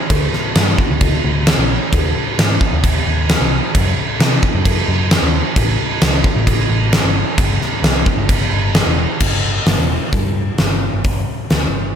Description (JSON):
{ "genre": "quiet-loud alternative rock", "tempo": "132 BPM", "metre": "4/4", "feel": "straight", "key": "unclear", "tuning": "A4 = 438 Hz", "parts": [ { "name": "hollow-body short-scale picked electric bass", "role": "bass", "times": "0.1-11.9 s", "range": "E1 to C3", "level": "-18 LUFS", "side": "equal", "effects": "none" }, { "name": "huge arena drum kit", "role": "drums", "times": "0.1-11.6 s", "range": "crash cymbal, hi-hat, kick drum, snare drum", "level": "-14 LUFS", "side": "equal", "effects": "none" } ], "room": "light reverb", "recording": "none", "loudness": "-13 LUFS", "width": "side -8 dB against mid", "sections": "0.0-9.2 A section; 9.2-12.0 B section", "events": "none", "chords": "none", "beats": "| 0.10 0.56 1.01 1.47 | 1.93 2.38 2.83 3.29 | 3.75 4.20 4.66 5.11 | 5.57 6.02 6.48 6.93 | 7.39 7.84 8.30 8.76 | 9.22 9.67 10.13 10.59 | 11.05 11.51" }